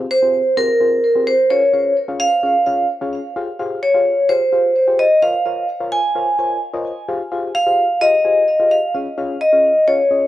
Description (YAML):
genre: pop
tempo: 129 BPM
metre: 4/4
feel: straight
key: F minor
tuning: A4 = 440 Hz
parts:
  - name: mellow FM electric piano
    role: accompaniment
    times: 0.0-10.3 s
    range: C4 to Ab5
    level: -25 LUFS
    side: left 3 dB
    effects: chorus, cassette tape
  - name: vibraphone with hard mallets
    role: melody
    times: 0.1-10.3 s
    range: Bb4 to Ab5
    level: -14 LUFS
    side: equal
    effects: cassette tape, tape echo
room: moderate studio reverb, RT60 0.6 s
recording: home recording on cassette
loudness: -14 LUFS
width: side -14 dB against mid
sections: 0.0-10.3 A section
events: none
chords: 0.0 Fmadd9; 1.5 Db; 3.4 Fmadd9; 5.2 Bbmadd9; 7.1 Fmadd9; 8.9 Db